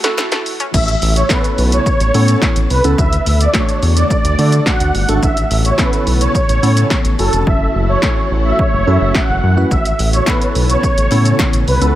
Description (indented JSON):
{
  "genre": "dance-pop",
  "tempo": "107 BPM",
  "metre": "4/4",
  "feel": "straight",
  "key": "A major",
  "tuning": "A4 = 440 Hz",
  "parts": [
    { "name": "glassy digital keys", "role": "accompaniment", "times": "0.0-12.0 s", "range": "A3 to B4", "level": "-21 LUFS", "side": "right 1 dB", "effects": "chorus, sidechain pumping" },
    { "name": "ethereal airy pad", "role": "sustained chords", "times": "0.0-11.9 s", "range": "C#3 to A4", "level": "-25 LUFS", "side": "left 1 dB", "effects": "ensemble chorus, built-in reverb, sidechain pumping" },
    { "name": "glassy wavetable pluck", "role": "arpeggios", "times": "0.0-0.7 s", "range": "A3 to F#4", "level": "-26 LUFS", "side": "left 4 dB", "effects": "chorus, sidechain pumping, tape echo" },
    { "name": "punchy analog drum machine", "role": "drums", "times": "0.0-11.9 s", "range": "crash cymbal, handclaps, hi-hat, kick drum, shaker, snare drum", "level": "-17 LUFS", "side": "equal", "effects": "none" },
    { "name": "group handclap", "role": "percussion", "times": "0.2-0.3, 10.3-11.5 s", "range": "none", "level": "-29 LUFS", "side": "left 8 dB", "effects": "none" },
    { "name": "filtered supersaw swell", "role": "melody", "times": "0.7-11.8 s", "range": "A4 to F#5", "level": "-18 LUFS", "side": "right 1 dB", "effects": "sidechain pumping" },
    { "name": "round analog bass", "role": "bass", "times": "0.7-11.9 s", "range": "F1 to D3", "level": "-14 LUFS", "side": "equal", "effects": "sidechain pumping" }
  ],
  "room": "little or no reverb",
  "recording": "high-pass filter",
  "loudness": "-12 LUFS",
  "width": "side -13 dB against mid",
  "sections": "0.7-12.0 A section",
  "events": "drum fill 0.0-0.7; drop 0.7-12.0; hi-hats muted 7.5-9.7",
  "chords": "0.0 F#m7; 0.7 Aadd9; 3.0 D; 5.2 Aadd9; 7.2 F#m7; 9.7 Aadd9"
}